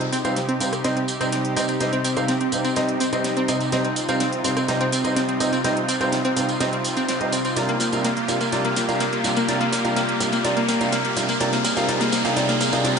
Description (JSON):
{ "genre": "progressive house", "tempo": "125 BPM", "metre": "4/4", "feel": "straight", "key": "C minor", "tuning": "A4 = 437 Hz", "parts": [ { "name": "supersaw pad", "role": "sustained chords", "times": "0.0-13.0 s", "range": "C3 to Ab4", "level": "-27 LUFS", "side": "equal", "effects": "none" }, { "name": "pop drum kit", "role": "drums", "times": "0.0-13.0 s", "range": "hi-hat, rim click, snare drum", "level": "-30 LUFS", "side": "equal", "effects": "high-pass filter on hats, studio reverb, high-pass filter on snare" }, { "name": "riser", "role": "sound effects", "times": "0.0-13.0 s", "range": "none", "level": "-30 LUFS", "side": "left 1 dB", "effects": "none" }, { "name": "glassy wavetable pluck", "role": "arpeggios", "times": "0.1-13.0 s", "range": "Bb3 to C4", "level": "-25 LUFS", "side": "equal", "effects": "chorus, tape echo" }, { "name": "saturated sub bass", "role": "bass", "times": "0.1-12.9 s", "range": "none", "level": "barely audible", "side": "none", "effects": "none" }, { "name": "tambourine", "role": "percussion", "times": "0.1-12.9 s", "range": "none", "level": "-32 LUFS", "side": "right 4 dB", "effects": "none" }, { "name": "warm concert grand piano", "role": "stabs", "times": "0.2-13.0 s", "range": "C3 to F5", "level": "-24 LUFS", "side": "right 1 dB", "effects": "tape echo" } ], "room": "moderate lush hall reverb, RT60 2.1 s", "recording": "nothing above 10.5 kHz", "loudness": "-19 LUFS", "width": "side -6 dB against mid", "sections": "0.0-13.0 A section", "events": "build-up 0.0-13.0; drum fill 0.0-13.0; riser 0.0-13.0", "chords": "0.0 Cm; 7.6 Gm7; 11.4 Ab" }